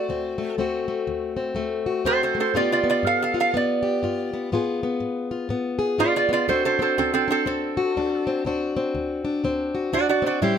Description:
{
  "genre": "acoustic country blues, solo or duo",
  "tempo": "122 BPM",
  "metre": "4/4",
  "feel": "swing 60% on 8ths",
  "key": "D mixolydian",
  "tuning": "A4 = 440 Hz",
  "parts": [
    { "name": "lap resonator guitar", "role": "melody", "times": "0.0-10.6 s", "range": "C4 to F5", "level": "-22 LUFS", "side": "right 5 dB", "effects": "none" },
    { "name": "fingerpicked plugged-in steel-string acoustic guitar", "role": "accompaniment", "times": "0.0-10.6 s", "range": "D2 to G#4", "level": "-24 LUFS", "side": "left 4 dB", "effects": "none" }
  ],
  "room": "light reverb",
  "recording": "close, detailed microphones",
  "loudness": "-21 LUFS",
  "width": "side -8 dB against mid",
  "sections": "0.0-10.6 A section",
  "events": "none",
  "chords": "0.0 D7; 2.5 G7; 4.5 G#dim7; 6.5 D7",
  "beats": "0.09 | 0.58 1.07 1.56 2.06 | 2.55 3.04 3.53 4.03 | 4.52 5.01 5.50 6.00 | 6.49 6.98 7.47 7.97 | 8.46 8.95 9.45 9.94 | 10.43"
}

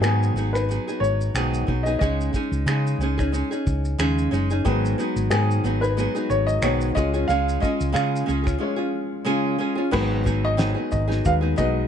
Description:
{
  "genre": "acoustic pop",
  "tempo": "91 BPM",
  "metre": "4/4",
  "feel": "swing 55% on 16ths",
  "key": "G# dorian",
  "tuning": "A4 = 440 Hz",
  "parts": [
    { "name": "warm upright piano", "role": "melody", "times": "0.0-11.9 s", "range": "G#4 to E#5", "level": "-26 LUFS", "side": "equal", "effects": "none" },
    { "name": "nylon-string guitar", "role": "accompaniment", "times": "0.0-11.9 s", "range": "G#2 to G#4", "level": "-25 LUFS", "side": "right 1 dB", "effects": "none" },
    { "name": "hollow-body short-scale fingered electric bass", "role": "bass", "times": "0.0-11.9 s", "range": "F#1 to C#3", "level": "-23 LUFS", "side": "equal", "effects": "none" },
    { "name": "cloth-damped thuddy drum kit", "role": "drums", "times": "0.0-11.8 s", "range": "crash cymbal, finger snaps, kick drum, shaker, snare drum", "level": "-28 LUFS", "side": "equal", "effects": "none" },
    { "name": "felt-muted upright piano", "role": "accompaniment", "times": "4.6-11.9 s", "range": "G#3 to C#5", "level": "-31 LUFS", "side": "left 7 dB", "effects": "none" }
  ],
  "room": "little or no reverb",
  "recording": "nothing above 10.5 kHz",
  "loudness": "-20 LUFS",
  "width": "side -8 dB against mid",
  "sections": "0.0-9.9 A section; 9.9-11.9 B section",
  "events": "none",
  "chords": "0.0 G#m7; 2.0 C#sus2; 4.7 G#m7; 7.0 C#; 9.9 G#m7",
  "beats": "0.03 0.69 1.35 | 2.01 2.67 3.33 3.99 | 4.65 5.32 5.97 6.63 | 7.29 7.96 8.62 9.28 | 9.94 10.60 11.26"
}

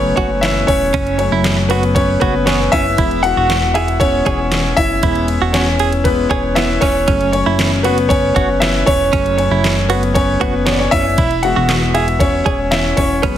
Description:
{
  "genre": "piano-driven pop",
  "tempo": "117 BPM",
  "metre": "4/4",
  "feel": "straight",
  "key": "F# minor",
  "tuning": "A4 = 440 Hz",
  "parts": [
    { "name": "clear grand piano", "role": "accompaniment", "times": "0.0-13.4 s", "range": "E3 to F#5", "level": "-15 LUFS", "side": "left 2 dB", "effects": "none" },
    { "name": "chorused synth bass", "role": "bass", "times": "0.0-13.4 s", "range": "E1 to F#1", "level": "-20 LUFS", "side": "equal", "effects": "none" },
    { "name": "direct-recorded clean electric guitar", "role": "riff", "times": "0.2-13.4 s", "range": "B3 to G#4", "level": "-20 LUFS", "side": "right 8 dB", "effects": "tremolo" },
    { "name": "pop drum kit", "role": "drums", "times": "0.2-13.4 s", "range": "handclaps, hi-hat, kick drum, ride cymbal, snare drum", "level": "-19 LUFS", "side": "equal", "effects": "none" }
  ],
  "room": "light reverb",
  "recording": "heavily compressed radio sound",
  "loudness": "-12 LUFS",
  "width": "side -11 dB against mid",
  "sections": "0.0-13.4 A section",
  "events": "grand piano solo 0.0-13.4",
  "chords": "0.0 F#m; 3.0 E; 7.1 F#m; 11.2 E",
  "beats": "0.43 | 0.94 1.45 1.96 2.47 | 2.98 3.50 4.01 4.52 | 5.03 5.54 6.06 6.57 | 7.08 7.59 8.11 8.62 | 9.13 9.64 10.16 10.67 | 11.18 11.70 12.21 12.72 | 13.24"
}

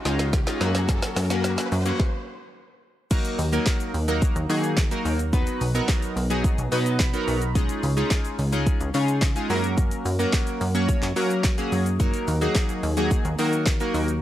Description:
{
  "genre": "dance-pop",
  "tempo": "108 BPM",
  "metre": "4/4",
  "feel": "straight",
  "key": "unclear",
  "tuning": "A4 = 443 Hz",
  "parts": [
    { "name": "riser", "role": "sound effects", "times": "0.0-2.0 s", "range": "none", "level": "-34 LUFS", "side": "right 1 dB", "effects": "none" },
    { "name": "chorused retro synth keys", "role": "accompaniment", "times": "0.1-14.1 s", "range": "Gb3 to Cb6", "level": "-26 LUFS", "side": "equal", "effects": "sidechain pumping" },
    { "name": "plucky analog bass", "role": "bass", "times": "0.1-14.2 s", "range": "Cb2 to Gb3", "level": "-25 LUFS", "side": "equal", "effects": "sidechain pumping" },
    { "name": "deep house drum kit", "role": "drums", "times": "0.1-14.2 s", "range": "crash cymbal, handclaps, hi-hat, kick drum, shaker, snare drum", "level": "-25 LUFS", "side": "equal", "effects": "none" },
    { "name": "egg shaker", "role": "percussion", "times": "0.1-14.2 s", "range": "none", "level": "-44 LUFS", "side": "left 2 dB", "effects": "none" }
  ],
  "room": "digital ambience",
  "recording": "dry, gritty hardware recording",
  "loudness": "-21 LUFS",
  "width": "side -13 dB against mid",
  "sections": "0.0-3.1 A section; 3.1-14.2 B section",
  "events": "build-up 0.0-3.1; drum fill 0.0-2.0; riser 0.0-3.1; stop 2.0-3.1; drop 3.1-14.2; synth keys fill 6.4-7.6",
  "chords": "0.0 Dbadd9; 0.6 Gb; 3.1 Ebm; 5.3 Cb; 7.6 Dbadd9; 9.5 Gb; 12.0 Ebm",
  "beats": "0.33 | 0.89 1.44 2.00 2.55 | 3.11 3.67 4.22 4.78 | 5.33 5.89 6.44 7.00 | 7.55 8.11 8.66 9.22 | 9.78 10.33 10.89 11.44 | 12.00 12.55 13.11 13.66"
}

